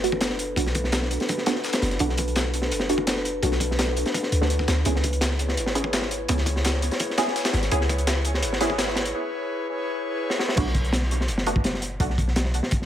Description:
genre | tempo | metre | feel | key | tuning
drum and bass, jungle | 168 BPM | 4/4 | straight | B dorian | A4 = 440 Hz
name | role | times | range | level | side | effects
filtered dub chord stab | stabs | 0.0-12.1 s | A3 to G#4 | -29 LUFS | right 2 dB | phaser, analog chorus, cassette tape, dub echo
warm 808-style bass | bass | 0.0-12.6 s | F#1 to D2 | -26 LUFS | equal | none
breakbeat sampler-style drum kit | drums | 0.0-9.1 s | hi-hat, snare drum | -33 LUFS | left 2 dB | high-pass filter on hats, high-pass filter on snare
crunchy breakbeat drum kit | drums | 0.0-12.9 s | crash cymbal, hi-hat, kick drum, snare drum | -25 LUFS | equal | high-pass filter on kick, high-pass filter on hats, high-pass filter on cymbals, high-pass filter on snare, high-pass filter on room
room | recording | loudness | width
light reverb, small room reverb | none | -22 LUFS | side -11 dB against mid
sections
0.0-10.6 A section; 10.6-12.9 B section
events
build-up 0.0-10.6; filter sweep on synth stab 0.0-10.6; break 9.1-10.6; drum fill 10.3; drop 10.6-12.9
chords
0.0 Bm7; 4.9 C#m7; 10.6 B5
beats
0.22 | 0.57 0.93 1.29 1.65 | 2.00 2.36 2.72 3.07 | 3.43 3.79 4.14 4.50 | 4.86 5.22 5.57 5.93 | 6.29 6.64 7.00 7.36 | 7.72 8.07 8.43 8.79 | 9.14 9.50 9.86 10.22 | 10.57 10.93 11.29 11.64 | 12.00 12.36 12.72

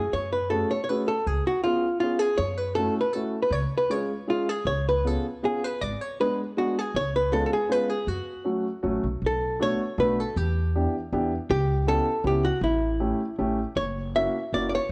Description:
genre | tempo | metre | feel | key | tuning
musette waltz | 159 BPM | 3/4 | rubato | F# harmonic minor, B minor from 9.2 s | A4 = 440 Hz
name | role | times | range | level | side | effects
archtop guitar, miked and amplified | melody | 0.0-14.9 s | E4 to E5 | -28 LUFS | equal | none
upright bass | bass | 0.0-14.9 s | F#1 to F#2 | -31 LUFS | equal | tube saturation
warm upright piano | accompaniment | 0.5-14.7 s | F#3 to G#4 | -32 LUFS | equal | none
room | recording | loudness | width
light reverb | worn, warbling old tape, cassette tape, warbly pitch drift | -26 LUFS | mono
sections
0.1-9.2 A section; 9.2-14.9 B section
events
none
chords
0.1 F#madd9; 1.3 C#7; 2.4 F#m7; 3.5 C#; 4.7 C#7; 5.8 G#dim; 6.9 C#7; 8.1 F#m; 9.2 Bm7; 10.4 Em7; 11.5 C#m7b5; 12.6 A7; 13.8 F#7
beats
| 0.14 0.52 0.89 | 1.27 1.64 2.02 | 2.39 2.77 3.14 | 3.52 3.90 4.28 | 4.67 5.05 5.43 | 5.81 6.19 6.57 | 6.94 7.32 7.69 | 8.07 8.45 8.83 | 9.22 9.60 9.99 | 10.37 10.74 11.12 | 11.49 11.87 12.24 | 12.61 12.99 13.38 | 13.76 14.14 14.52 | 14.90

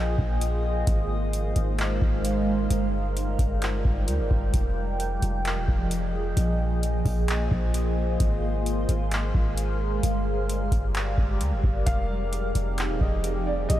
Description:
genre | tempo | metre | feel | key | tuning
hip hop, atmospheric cloud-rap | 131 BPM | 4/4 | half-time | F dorian | A4 = 438 Hz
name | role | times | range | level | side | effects
shimmering ambient pad | sustained chords | 0.0-13.8 s | F3 to G5 | -29 LUFS | equal | chorus, built-in reverb, phaser, sidechain pumping
warm 808-style bass | bass | 0.0-13.8 s | Eb1 to D2 | -26 LUFS | equal | none
booming analog drum machine | drums | 0.2-13.8 s | handclaps, hi-hat, kick drum | -28 LUFS | equal | none
felt-muted upright piano | melody | 11.9-13.8 s | D5 to F5 | -32 LUFS | equal | lush chorus, low-pass filter, tape echo
room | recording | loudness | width
light reverb | none | -23 LUFS | side -13 dB against mid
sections
0.0-11.9 A section; 11.9-13.8 B section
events
none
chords
0.0 Bb9sus4; 0.9 Ab6; 2.7 Gm7; 4.5 Fm7; 6.4 Bb9sus4; 8.2 Ab6; 10.0 Gm7; 11.9 Fm7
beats
0.42 | 0.87 1.33 1.79 2.25 | 2.71 3.16 3.62 4.08 | 4.54 5.00 5.45 5.91 | 6.37 6.83 7.29 7.74 | 8.20 8.66 9.12 9.58 | 10.03 10.49 10.95 11.41 | 11.87 12.32 12.78 13.24 | 13.70

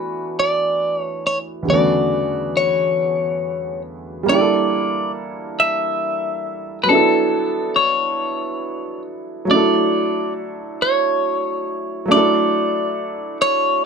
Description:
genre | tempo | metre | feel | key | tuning
R&B | 46 BPM (dotted quarters) | 6/8 | straight | D major | A4 = 440 Hz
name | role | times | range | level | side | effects
clean electric guitar | melody | 0.0-13.8 s | A4 to E5 | -18 LUFS | left 1 dB | phaser
warm concert grand piano | accompaniment | 0.0-13.9 s | E2 to A4 | -21 LUFS | right 2 dB | none
room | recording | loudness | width
moderate studio ambience, RT60 0.4 s | band playing live in one room | -17 LUFS | side -5 dB against mid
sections
0.0-4.3 A section; 4.3-13.9 B section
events
grand piano fill 13.4-13.9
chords
0.0 D69; 1.7 E13sus4; 4.3 Gm6; 6.9 E9sus4; 9.5 Dadd9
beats
0.36 | 1.66 2.97 | 4.27 5.58 | 6.88 8.19 | 9.49 10.79 | 12.10 13.40

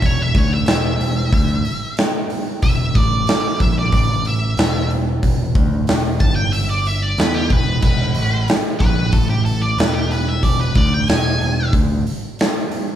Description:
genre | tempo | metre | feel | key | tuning
blues rock power trio and southern rock | 92 BPM | 4/4 | straight | unclear | A4 = 439 Hz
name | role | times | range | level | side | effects
octave-fuzz lead guitar | melody | 0.0-11.7 s | G4 to A5 | -23 LUFS | right 1 dB | distortion
growling picked electric bass | bass | 0.0-12.0 s | E1 to E2 | -20 LUFS | equal | overdrive
big rock drum kit | drums | 0.0-12.9 s | crash cymbal, hi-hat, kick drum, snare drum | -18 LUFS | equal | none
room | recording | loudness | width
light reverb | band playing live in one room | -15 LUFS | side -10 dB against mid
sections
0.0-13.0 A section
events
lead electric guitar solo 0.0-13.0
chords
0.0 E7(no3); 3.9 A5; 4.6 Dsus2/E; 6.2 G5; 7.2 E5; 9.1 A7sus4; 9.8 N.C.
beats
| 0.03 0.68 1.32 1.98 | 2.63 3.28 3.93 4.58 | 5.23 5.88 6.53 7.18 | 7.83 8.48 9.13 9.78 | 10.43 11.09 11.74 12.39

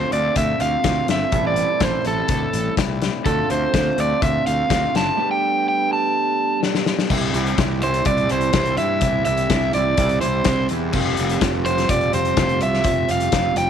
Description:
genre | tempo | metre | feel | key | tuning
indie rock | 125 BPM | 4/4 | straight | unclear | A4 = 442 Hz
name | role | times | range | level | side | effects
overdriven electric guitar | melody | 0.0-13.7 s | A4 to A5 | -21 LUFS | right 1 dB | tape echo
electric guitar through a small old amp | riff | 0.0-13.7 s | A2 to A4 | -28 LUFS | left 12 dB | none
electric guitar through a small old amp | riff | 0.0-13.7 s | A2 to B4 | -26 LUFS | right 13 dB | lush chorus
fuzz fingered electric bass | bass | 0.0-13.7 s | F1 to G2 | -24 LUFS | equal | overdrive
loose indie drum kit | drums | 0.1-13.7 s | crash cymbal, hi-hat, kick drum, snare drum | -23 LUFS | left 4 dB | none
room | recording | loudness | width
light reverb, small room ambience | 1960s-style stereo with parts hard left and right | -17 LUFS | side -8 dB against mid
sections
0.0-7.1 A section; 7.1-13.7 B section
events
drum fill 6.6-7.1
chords
0.0 Dm7; 1.3 Am7; 3.3 Dm7; 5.2 Gadd9; 7.1 C; 10.9 Fsus2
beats
0.37 0.85 | 1.33 1.81 2.29 2.77 | 3.25 3.74 4.22 4.70 | 5.18 5.66 6.14 6.62 | 7.10 7.58 8.06 8.54 | 9.02 9.50 9.98 10.46 | 10.94 11.42 11.90 12.37 | 12.85 13.33

